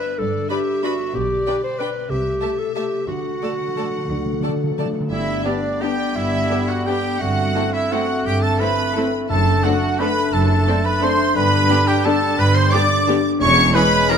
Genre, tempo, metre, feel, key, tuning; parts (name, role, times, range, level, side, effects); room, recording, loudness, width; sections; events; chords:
classical, orchestral ballroom waltz; 162-201 BPM; 3/4; rubato; G major; A4 = 440 Hz
rich studio violin section; melody; 0.0-14.2 s; D5 to D6; -25 LUFS; left 2 dB
warm clarinet; second line; 0.0-14.2 s; B3 to C5; -25 LUFS; equal
concert harp; arpeggios; 0.0-14.2 s; E2 to D5; -27 LUFS; left 9 dB
rich studio cello section; bass; 0.2-13.7 s; E2 to D3; -24 LUFS; right 2 dB
rich studio double bass section; bass; 0.2-13.7 s; E1 to D2; -25 LUFS; right 3 dB
rich studio violin section; second line; 0.5-14.2 s; C#4 to B5; -29 LUFS; left 2 dB
rich studio viola section; accompaniment; 0.5-14.2 s; D3 to B4; -28 LUFS; equal
timpani; percussion; 3.1-5.1, 9.3-9.8 s; F#2 to D3; -28 LUFS; right 2 dB
concert flute; second line; 5.1-14.2 s; D5 to D6; -26 LUFS; left 1 dB
warm cor anglais; second line; 5.1-14.2 s; D4 to D5; -27 LUFS; right 3 dB
clear bassoon; accompaniment; 5.1-14.2 s; G3 to A3; -28 LUFS; right 3 dB
warm trumpet; stabs; 5.1-14.2 s; D4 to D5; -24 LUFS; right 3 dB
dark French horn section; sustained chords; 5.5-14.2 s; G3 to D4; -28 LUFS; left 4 dB
moderate scoring stage reverb, RT60 1.5 s; -16 LUFS; side -7 dB against mid
0.0-5.1 A section; 5.1-14.2 B section
timpani fill 3.1-5.1
0.0 G; 1.2 G/B; 2.1 Am/C; 3.1 D; 5.1 G; 7.2 Am7/G; 9.3 D7/F#; 11.4 G; 13.4 C#m7/E